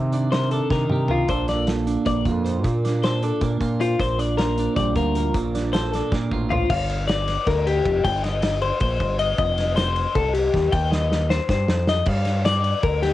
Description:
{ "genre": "math rock and midwest emo", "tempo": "312 BPM (eighths)", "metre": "7/8", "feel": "straight", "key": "Bb major", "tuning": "A4 = 440 Hz", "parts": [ { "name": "twelve-string electric guitar", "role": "accompaniment", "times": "0.0-6.7 s", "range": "Bb2 to C5", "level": "-25 LUFS", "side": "right 4 dB", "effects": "phaser, cassette tape" }, { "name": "growling fingered electric bass", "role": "bass", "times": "0.0-13.1 s", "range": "F1 to C3", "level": "-24 LUFS", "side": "equal", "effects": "overdrive" }, { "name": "loose indie drum kit", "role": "drums", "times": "0.1-13.1 s", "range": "crash cymbal, hi-hat, kick drum, ride cymbal, snare drum, toms", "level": "-26 LUFS", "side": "equal", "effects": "cassette tape" }, { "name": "twelve-string electric guitar", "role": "arpeggios", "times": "0.3-13.1 s", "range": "F4 to G5", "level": "-23 LUFS", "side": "left 5 dB", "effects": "cassette tape" } ], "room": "light reverb", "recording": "home recording on cassette, vinyl crackle, nothing above 10.7 kHz", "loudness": "-19 LUFS", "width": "side -14 dB against mid", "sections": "0.0-6.7 A section; 6.7-13.1 B section", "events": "drum fill 0.7-1.3, 6.1-6.7, 10.9-12.1", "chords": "0.0 Cm9; 1.3 Bbmaj9; 4.0 Gm7/Bb; 5.3 Bbmaj9; 6.7 Gm7; 8.0 Eb6/G; 9.4 F5; 10.7 Cm/Eb; 12.1 Gm7", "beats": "0.12 0.31 0.51 0.70 0.89 1.09 | 1.28 1.48 1.67 1.86 2.06 2.25 2.45 | 2.64 2.83 3.03 3.22 3.41 3.61 3.80 | 4.00 4.19 4.38 4.58 4.77 4.96 5.16 | 5.35 5.54 5.74 5.93 6.12 6.31 6.51 | 6.70 6.89 7.08 7.28 7.47 7.66 7.85 | 8.04 8.23 8.43 8.62 8.81 9.00 9.19 | 9.39 9.58 9.77 9.96 10.15 10.34 10.54 | 10.73 10.92 11.11 11.30 11.49 11.69 11.88 | 12.07 12.26 12.45 12.64 12.84 13.03" }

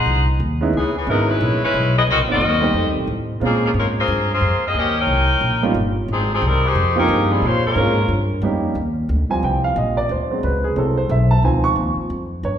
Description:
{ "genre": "jazz, big band swing", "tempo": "180 BPM", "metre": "4/4", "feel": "swing 62% on 8ths", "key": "Eb major from 8.8 s", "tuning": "A4 = 440 Hz", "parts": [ { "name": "clear saxophone section", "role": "melody", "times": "0.0-8.3 s", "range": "Eb3 to G5", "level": "-19 LUFS", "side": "left 2 dB", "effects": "none" }, { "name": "upright bass", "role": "bass", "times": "0.0-12.6 s", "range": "Gb1 to Bb2", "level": "-20 LUFS", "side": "equal", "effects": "none" }, { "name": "warm upright piano", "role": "accompaniment", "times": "0.6-12.6 s", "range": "Eb3 to Db6", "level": "-21 LUFS", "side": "right 2 dB", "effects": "none" } ], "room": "wet recital hall reverb, RT60 1.7 s", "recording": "recorded in a church or concert hall", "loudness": "-16 LUFS", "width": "side -9 dB against mid", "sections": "0.0-8.8 A section; 8.8-12.6 B section", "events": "upright piano solo 8.8-12.6", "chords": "0.0 Ab7; 0.7 Dbm7; 2.1 Cm7b5; 2.7 F7; 3.4 Bbm7; 4.8 Eb7; 6.1 Ab6; 6.8 Fm11; 7.4 Bbm7; 8.1 Eb7; 8.8 Eb6; 10.1 D7#11; 11.4 Dbmaj7", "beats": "0.07 0.41 | 0.74 1.07 1.41 1.74 | 2.08 2.41 2.75 3.08 | 3.42 3.75 4.08 4.42 | 4.75 5.09 5.42 5.76 | 6.09 6.42 6.76 7.09 | 7.43 7.76 8.10 8.43 | 8.76 9.10 9.43 9.77 | 10.10 10.44 10.77 11.10 | 11.44 11.77 12.11 12.44" }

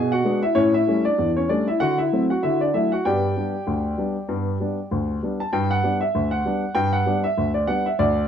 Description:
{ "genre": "ragtime piano", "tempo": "97 BPM", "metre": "2/4", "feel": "swing 58% on 16ths", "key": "G major", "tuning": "A4 = 440 Hz", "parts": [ { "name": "warm upright piano", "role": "solo", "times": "0.0-8.3 s", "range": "D2 to A5", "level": "-19 LUFS", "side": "equal", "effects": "none" } ], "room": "moderate small room reverb, RT60 0.5 s", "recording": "dark, warm production", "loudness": "-20 LUFS", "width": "side -8 dB against mid", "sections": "0.0-5.5 A section; 5.5-8.3 B section", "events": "none", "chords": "0.0 E7; 0.6 A7; 1.8 D7; 2.4 D; 3.0 G", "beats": "| 0.56 1.17 | 1.79 2.41 | 3.03 3.66 | 4.28 4.90 | 5.53 6.14 | 6.76 7.38 | 8.00" }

